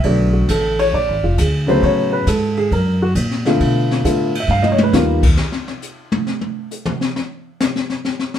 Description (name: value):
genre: jazz piano trio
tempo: 135 BPM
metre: 4/4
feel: swing 68% on 8ths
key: unclear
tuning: A4 = 440 Hz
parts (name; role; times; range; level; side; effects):
- dark baby grand piano; melody; 0.0-5.3 s; C#3 to F5; -17 LUFS; left 1 dB; none
- upright bass; bass; 0.0-5.4 s; F1 to B2; -18 LUFS; equal; none
- jazz brush drum kit; drums; 0.0-8.4 s; crash cymbal, hi-hat, kick drum, ride cymbal, snare drum, toms; -20 LUFS; left 1 dB; none
room: moderate studio reverb, RT60 0.6 s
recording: band playing live in one room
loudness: -15 LUFS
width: side -10 dB against mid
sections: 0.0-5.4 A section; 5.4-8.4 A section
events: grand piano solo 0.0-5.4; drum fill 4.5-4.9; drum solo 5.4-8.4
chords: 0.1 Bm7; 0.9 Bb7; 1.8 A6; 2.7 F#; 3.6 Bm7b5; 4.5 Gaug7; 5.4 N.C.